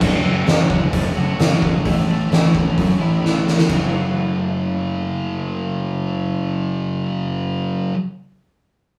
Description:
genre	quiet-loud alternative rock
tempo	130 BPM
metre	4/4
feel	straight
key	F# minor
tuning	A4 = 440 Hz
part	electric guitar at the edge of break-up	arpeggios	0.0-8.0 s	F#2 to F#4	-30 LUFS	equal	none
part	thick fuzz guitar	riff	0.0-8.0 s	F#2 to A4	-26 LUFS	equal	distortion
part	fuzz picked electric bass	bass	0.0-7.9 s	F#1 to F#2	-25 LUFS	equal	overdrive
part	oversized low-tuned drum kit	drums	0.0-3.8 s	crash cymbal, hi-hat, kick drum, ride cymbal, snare drum	-21 LUFS	equal	none
room	light reverb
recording	rough rehearsal-room recording, warm saturation, studio reverb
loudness	-19 LUFS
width	mono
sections	0.0-3.7 A section; 3.7-7.4 B section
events	drum fill 3.2-3.7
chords	0.0 F#m; 1.8 A; 3.7 F#m

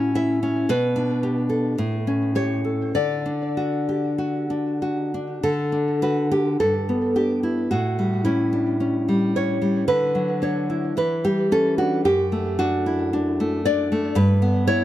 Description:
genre	romantic piece for solo classical guitar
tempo	47-59 BPM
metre	2/4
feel	rubato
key	D major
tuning	A4 = 440 Hz
part	nylon-string guitar	solo	0.0-14.8 s	F#2 to F#5	-20 LUFS	equal	tape echo
room	moderate recital hall reverb, RT60 1.6 s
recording	close, detailed microphones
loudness	-20 LUFS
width	side -13 dB against mid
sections	0.0-5.4 A section; 5.4-14.8 A section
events	none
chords	0.0 A; 0.7 G/B; 1.8 A7; 2.9 D; 6.6 G; 7.7 A7; 9.9 D; 11.0 Em13; 12.1 D/F#; 14.2 Em/G

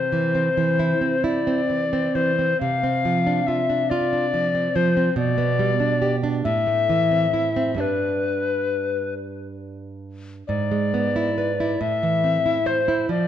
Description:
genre	romantic duo for recorder and classical guitar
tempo	46 BPM (dotted quarters)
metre	6/8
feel	uneven beats, rubato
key	unclear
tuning	A4 = 440 Hz
part	alto recorder	melody	0.0-13.3 s	B4 to F5	-22 LUFS	left 5 dB	none
part	nylon-string guitar	accompaniment	0.0-13.3 s	G2 to C5	-23 LUFS	right 3 dB	none
room	moderate scoring stage reverb, RT60 1.5 s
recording	dark, warm production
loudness	-19 LUFS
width	side -10 dB against mid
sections	0.0-13.3 A section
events	none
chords	0.0 C; 2.6 Dm7/C; 5.2 G/B; 6.5 Am; 7.8 G; 10.5 E7/G#; 11.8 Am

